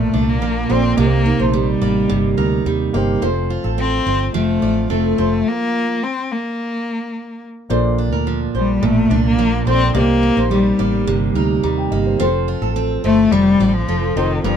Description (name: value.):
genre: acoustic pop.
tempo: 107 BPM.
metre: 4/4.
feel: straight.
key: Bb major.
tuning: A4 = 441 Hz.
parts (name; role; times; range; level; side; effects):
warm cello; melody; 0.0-14.6 s; Eb3 to C4; -18 LUFS; left 4 dB; none.
dark upright piano; accompaniment; 0.0-14.6 s; A3 to Bb5; -27 LUFS; left 6 dB; none.
picked steel-string acoustic guitar; accompaniment; 0.0-14.6 s; G2 to F4; -20 LUFS; right 7 dB; none.
vintage muted fingered electric bass; bass; 0.0-14.6 s; F1 to Eb2; -20 LUFS; equal; none.
flamenco guitar; arpeggios; 0.1-14.6 s; A4 to D5; -24 LUFS; right 1 dB; none.
room: little or no reverb.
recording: minimal, uncompressed stereo recording.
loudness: -15 LUFS.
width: side -8 dB against mid.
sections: 0.0-7.7 A section; 7.7-14.6 A section.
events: stop 5.5-7.7.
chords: 0.0 Bbmaj7; 1.0 Cm7; 3.2 F; 5.5 N.C.; 7.7 Bbmaj7; 9.9 Cm7; 12.2 F.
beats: 0.41 | 0.97 1.54 2.10 2.66 | 3.22 3.78 4.34 4.90 | 5.46 6.02 6.58 7.14 | 7.71 8.27 8.83 9.39 | 9.95 10.51 11.07 11.63 | 12.20 12.76 13.32 13.88 | 14.45.